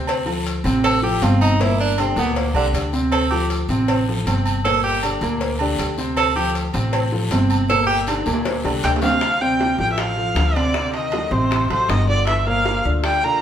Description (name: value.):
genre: Afro-Cuban jazz.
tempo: 158 BPM.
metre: 4/4.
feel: straight.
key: D minor.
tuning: A4 = 440 Hz.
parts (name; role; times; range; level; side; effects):
warm grand piano; accompaniment; 0.0-13.4 s; Bb2 to C5; -23 LUFS; equal; none.
upright bass; bass; 0.0-13.4 s; G1 to D2; -22 LUFS; left 1 dB; none.
agogo bells and timbales; percussion; 0.1-13.2 s; none; -28 LUFS; right 4 dB; none.
cowbell and bongos; percussion; 0.1-13.2 s; none; -28 LUFS; left 3 dB; none.
guiro; percussion; 0.1-9.2 s; none; -34 LUFS; left 4 dB; none.
clear tenor saxophone; second line; 0.8-13.4 s; C3 to A4; -23 LUFS; right 3 dB; none.
rich erhu; melody; 8.8-13.4 s; C5 to Bb5; -20 LUFS; equal; tape echo.
room: wet large studio reverb, RT60 0.9 s.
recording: band playing live in one room.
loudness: -17 LUFS.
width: side -9 dB against mid.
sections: 0.0-9.2 A section; 9.2-13.4 B section.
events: tenor saxophone solo 0.0-9.2; drum fill 8.1-9.2.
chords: 0.1 Dm7; 1.6 Gm; 3.1 Dm7; 4.6 Gm; 6.2 Dm7; 7.7 Gm; 9.2 Dm7; 10.7 D7b9; 12.3 Gm7.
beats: | 0.08 0.46 0.84 1.22 | 1.60 1.98 2.36 2.74 | 3.12 3.50 3.88 4.26 | 4.64 5.02 5.40 5.78 | 6.16 6.54 6.92 7.31 | 7.69 8.07 8.45 8.83 | 9.21 9.60 9.98 10.36 | 10.74 11.13 11.51 11.89 | 12.28 12.66 13.04.